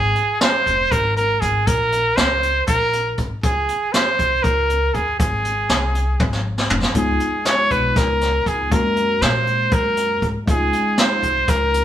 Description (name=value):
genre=progressive instrumental, band music in an uneven meter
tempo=238 BPM (eighths)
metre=7/8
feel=straight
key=unclear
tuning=A4 = 441 Hz
part: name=bright trumpet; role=melody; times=0.0-11.8 s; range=Ab4 to Db5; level=-18 LUFS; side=right 1 dB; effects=none
part: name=upright bass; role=bass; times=0.0-11.8 s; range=F1 to Bb2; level=-24 LUFS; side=equal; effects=none
part: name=jazz brush drum kit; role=drums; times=0.2-11.8 s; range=hi-hat, kick drum, snare drum, toms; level=-21 LUFS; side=equal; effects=none
part: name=tine electric piano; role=accompaniment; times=6.9-11.8 s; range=Ab3 to Gb4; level=-25 LUFS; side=left 2 dB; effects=overdrive, phaser
room=moderate studio reverb, RT60 0.8 s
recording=band playing live in one room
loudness=-16 LUFS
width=side -11 dB against mid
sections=0.0-11.8 A section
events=drum fill 6.2-7.0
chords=0.0 Ab; 1.7 Bbm; 3.4 Dbsus2; 5.2 Ab; 7.0 Db7; 8.7 Gbadd9; 10.5 Dbadd9